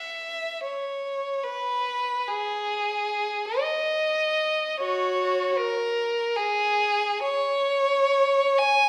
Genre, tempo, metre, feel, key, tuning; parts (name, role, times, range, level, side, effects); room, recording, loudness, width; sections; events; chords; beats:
classical, free, expressive piece for unaccompanied violin; free time; A4 = 440 Hz
rich violin; solo; 0.0-8.9 s; F#4 to G#5; -25 LUFS; equal
wet recital hall reverb, RT60 1.5 s; recorded in a church or concert hall; -25 LUFS; mono
0.0-8.9 A section
free time